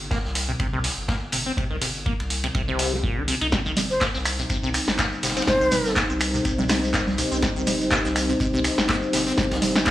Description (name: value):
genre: acid house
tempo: 123 BPM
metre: 4/4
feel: swing 56% on 16ths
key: C minor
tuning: A4 = 440 Hz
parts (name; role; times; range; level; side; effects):
- round analog bass; bass; 0.0-9.9 s; G1 to C2; -32 LUFS; equal; sidechain pumping
- liquid acid bass; riff; 0.1-9.9 s; Bb2 to Eb4; -29 LUFS; left 1 dB; phaser, tube saturation, vintage 12-bit sampler grit, sidechain pumping, analog delay
- electronic kick drum; drums; 0.1-9.9 s; none; -29 LUFS; equal; none
- street-band drum kit; drums; 0.1-9.9 s; ride cymbal, snare drum; -34 LUFS; equal; sidechain pumping on cymbals, high-pass filter on cymbals, high-pass filter on snare, high-pass filter on room
- electro analog drum machine; drums; 0.4-9.9 s; congas, finger snaps, handclaps, hi-hat, snare drum; -24 LUFS; equal; none
- dark analog pad; sustained chords; 4.4-9.9 s; G3 to C5; -26 LUFS; left 1 dB; chorus, sidechain pumping
- shekere; percussion; 3.5-9.9 s; none; -33 LUFS; right 2 dB; none
- breathy mellow silver concert flute; melody; 3.9-6.0 s; C5; -25 LUFS; equal; analog delay
room: moderate plate reverb, RT60 1.4 s, studio reverb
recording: dry, gritty hardware recording, small room ambience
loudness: -20 LUFS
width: side -14 dB against mid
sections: 0.0-9.9 A section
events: none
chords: 0.0 Cm